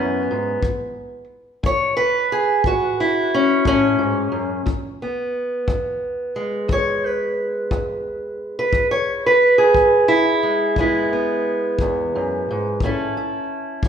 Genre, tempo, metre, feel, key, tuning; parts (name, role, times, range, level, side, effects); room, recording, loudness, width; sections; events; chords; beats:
acoustic country blues, solo or duo; 59 BPM (dotted quarters); 12/8; straight; E major; A4 = 440 Hz
fingerpicked steel-string acoustic guitar; melody; 0.0-13.9 s; E2 to C#5; -18 LUFS; right 1 dB
kick drum; drums; 0.6-13.9 s; -24 LUFS; left 2 dB
wet recital hall reverb, RT60 1.5 s; recorded in a church or concert hall; -17 LUFS; side -8 dB against mid
0.0-13.9 A section
0.0 E (rootless); 0.6 A; 4.7 E; 12.8 A
| 0.63 1.64 2.65 3.66 | 4.68 5.69 6.70 7.72 | 8.73 9.75 10.77 11.79 | 12.80 13.82